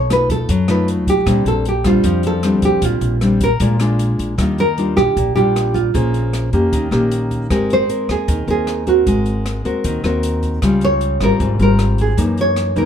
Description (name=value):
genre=bossa nova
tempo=154 BPM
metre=4/4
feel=straight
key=Bb major, Eb major from 4.4 s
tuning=A4 = 440 Hz
part: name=nylon-string guitar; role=melody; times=0.0-12.9 s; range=F4 to Db5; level=-18 LUFS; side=right 2 dB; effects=none
part: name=nylon-string guitar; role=accompaniment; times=0.0-12.9 s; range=Gb2 to C5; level=-18 LUFS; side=left 2 dB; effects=none
part: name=upright bass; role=bass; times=0.0-12.8 s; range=Ab1 to F#2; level=-20 LUFS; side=equal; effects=none
part: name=open jazz drum kit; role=drums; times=0.1-12.9 s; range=hi-hat, kick drum, rim click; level=-25 LUFS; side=equal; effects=none
room=little or no reverb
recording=none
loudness=-14 LUFS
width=side -8 dB against mid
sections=0.0-4.4 A section; 4.4-12.9 B section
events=none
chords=0.0 B7#11; 1.3 Bb69; 3.6 Bb7; 4.4 Ebmaj9; 5.9 Bbm9; 6.7 Eb7; 7.5 Abmaj9; 9.1 Ab9; 10.6 Dbmaj7#11; 12.2 Gb13